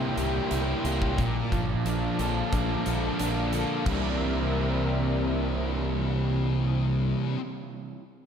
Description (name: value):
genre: rock, shoegaze and dream pop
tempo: 90 BPM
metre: 4/4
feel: straight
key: C mixolydian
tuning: A4 = 440 Hz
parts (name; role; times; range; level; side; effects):
- brassy analog pad; sustained chords; 0.0-7.1 s; C3 to D6; -34 LUFS; left 1 dB; chorus
- crunchy overdriven guitar; riff; 0.0-7.4 s; Bb2 to A4; -30 LUFS; right 7 dB; reverse reverb
- thick fuzz guitar; riff; 0.0-7.4 s; Bb2 to A4; -30 LUFS; left 7 dB; distortion, analog chorus
- growling fingered electric bass; bass; 0.0-7.1 s; G1 to C2; -30 LUFS; equal; overdrive
- huge arena drum kit; drums; 0.2-4.0 s; crash cymbal, hi-hat, kick drum; -35 LUFS; equal; none
room: moderate plate reverb, RT60 2.5 s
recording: dreamy mix soaked in reverb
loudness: -24 LUFS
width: side -8 dB against mid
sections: 0.0-3.9 A section; 3.9-6.5 B section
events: none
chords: 0.0 C7; 1.2 Bbmaj7; 3.9 C7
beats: 0.52 | 1.19 1.86 2.53 3.20 | 3.87 4.54 5.21 5.88